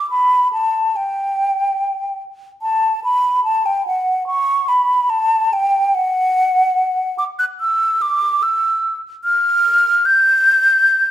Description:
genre	classical, baroque-style fantasia for unaccompanied flute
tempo	72 BPM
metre	3/4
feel	rubato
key	G major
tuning	A4 = 442 Hz
part	mellow hollow concert flute	solo	0.0-11.1 s	F#5 to G6	-14 LUFS	equal	none
room	wet recital hall reverb, RT60 1.5 s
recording	none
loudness	-14 LUFS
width	side -12 dB against mid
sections	0.0-11.1 A section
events	none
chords	none

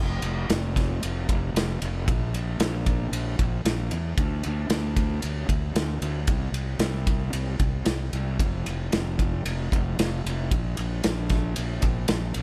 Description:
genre	rock, shoegaze and dream pop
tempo	114 BPM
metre	4/4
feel	straight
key	unclear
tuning	A4 = 442 Hz
part	fuzz fingered electric bass	bass	0.0-12.4 s	F1 to E2	-30 LUFS	equal	overdrive
part	loose indie drum kit	drums	0.2-12.4 s	kick drum, ride cymbal, snare drum	-29 LUFS	equal	none
room	light reverb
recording	none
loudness	-26 LUFS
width	mono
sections	0.0-12.4 A section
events	none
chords	none

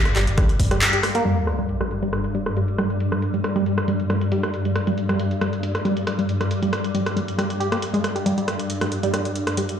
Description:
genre	driving peak-time techno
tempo	137 BPM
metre	4/4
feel	straight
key	unclear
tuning	A4 = 441 Hz
part	swarming drone	drone	0.0-9.8 s	G2 to G3	-24 LUFS	left 1 dB	built-in reverb, sidechain pumping
part	punchy analog drum machine	drums	0.1-9.8 s	handclaps, hi-hat, rim click	-26 LUFS	equal	overdrive, low-pass filter on hats, low-pass filter on snare, low-pass filter on room
part	tight sequenced synth	riff	0.2-9.6 s	G3 to G4	-25 LUFS	right 1 dB	chorus, phaser, overdrive, sidechain pumping, ping-pong delay
part	warm sub bass	bass	0.2-0.8 s	G1	-24 LUFS	equal	overdrive, sidechain pumping, low-pass filter
part	electronic kick drum	drums	0.4-0.7 s	none	-20 LUFS	equal	overdrive
part	sub drop	sound effects	1.3-3.0 s	none	-28 LUFS	equal	none
room	moderate plate reverb, RT60 1.5 s, digital ambience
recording	played on a big sound system in a bare room, large studio reverb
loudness	-20 LUFS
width	side -8 dB against mid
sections	0.0-1.3 A section; 1.3-9.8 B section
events	band accent 0.8; impact 1.3-3.0; filter sweep on drum 1.3-9.8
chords	0.0 G5; 1.3 N.C.

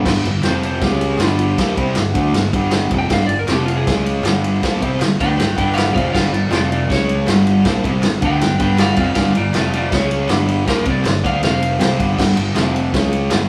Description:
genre	garage rock duo or trio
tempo	159 BPM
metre	4/4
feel	straight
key	unclear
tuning	A4 = 440 Hz
part	fuzz guitar	riff	0.0-13.5 s	F2 to D4	-20 LUFS	equal	distortion
part	fuzz fingered electric bass	bass	0.0-13.5 s	F1 to D2	-25 LUFS	equal	overdrive
part	vintage drum kit	drums	0.1-13.4 s	crash cymbal, kick drum, ride cymbal, snare drum	-22 LUFS	equal	none
part	group handclap	percussion	0.4-13.4 s	none	-33 LUFS	equal	none
part	electric slide guitar	melody	0.5-12.2 s	F4 to G5	-25 LUFS	equal	none
room	moderate large studio reverb, RT60 1.3 s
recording	band playing live in one room, small room ambience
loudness	-17 LUFS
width	mono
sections	0.1-12.2 A section; 12.2-13.5 B section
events	electric slide guitar solo 0.1-12.2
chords	0.4 F5; 0.8 C#5; 1.2 G5; 3.5 F5; 3.9 C#5; 4.2 G; 6.5 F5; 6.9 C#5; 7.3 G; 9.5 F5; 9.9 C#5; 10.3 G5; 11.4 F5; 11.8 G5; 12.6 F5; 12.9 C#5

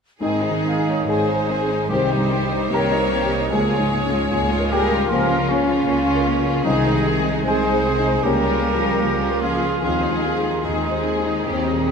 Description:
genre	classical, romantic movement for piano and orchestra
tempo	68-79 BPM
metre	4/4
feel	rubato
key	Ab major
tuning	A4 = 444 Hz
part	rich studio violin section	melody	0.2-11.9 s	Db4 to Ab4	-28 LUFS	left 3 dB	none
part	warm concert grand piano	melody	0.2-11.9 s	C2 to Bb5	-22 LUFS	left 2 dB	none
part	bright flute section	second line	0.2-11.9 s	F4 to Db5	-28 LUFS	left 1 dB	none
part	clear chamber violin section	second line	0.2-11.9 s	F4 to Db5	-28 LUFS	left 3 dB	none
part	mellow cor anglais	second line	0.2-11.9 s	Db4 to Bb4	-27 LUFS	right 4 dB	none
part	rich studio viola section	accompaniment	0.2-11.9 s	Eb3 to Eb4	-27 LUFS	right 2 dB	none
part	mellow French horn section	sustained chords	0.2-11.9 s	Eb3 to Db4	-28 LUFS	left 3 dB	none
part	clear studio cello section	bass	0.2-11.9 s	Db3 to Bb3	-28 LUFS	right 2 dB	none
part	warm studio double bass section	bass	0.2-11.9 s	Ab1 to Eb2	-28 LUFS	right 3 dB	none
part	timpani	percussion	11.5-11.9 s	Eb3	-35 LUFS	left 6 dB	none
room	wet scoring stage reverb, RT60 1.7 s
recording	minimal, uncompressed stereo recording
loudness	-17 LUFS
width	side -6 dB against mid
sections	0.2-11.9 A section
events	none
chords	0.2 Ab; 1.9 Cm; 3.5 Db6; 5.1 Bbm/Db; 6.6 Ab/C; 8.2 Bbm/Db; 9.8 Ab/Eb

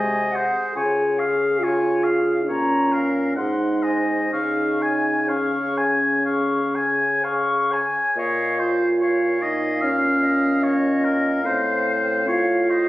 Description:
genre	classical, slow romantic movement for wind quintet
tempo	60-75 BPM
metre	4/4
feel	rubato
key	Db major, Bb minor from 8.2 s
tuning	A4 = 440 Hz
part	silver concert flute	melody	0.0-12.9 s	Eb5 to Db6	-26 LUFS	left 1 dB	none
part	clear oboe	second line	0.0-12.9 s	Bb4 to Ab5	-24 LUFS	left 1 dB	none
part	mellow French horn	accompaniment	0.0-12.9 s	Ab3 to Ab4	-22 LUFS	right 1 dB	none
part	mellow clarinet	accompaniment	0.0-12.9 s	F4 to F5	-34 LUFS	right 2 dB	none
part	dark bassoon	bass	0.0-12.9 s	Ab2 to Db3	-27 LUFS	equal	none
room	wet recital hall reverb, RT60 1.6 s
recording	recorded on a phone in the room, studio reverb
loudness	-18 LUFS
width	side -16 dB against mid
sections	0.0-8.2 A section; 8.2-12.9 B section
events	none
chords	0.0 Ab7/C; 0.8 Db; 2.5 Bbm; 3.4 Ab7; 4.3 Db; 8.2 Bbm; 11.4 F7/A

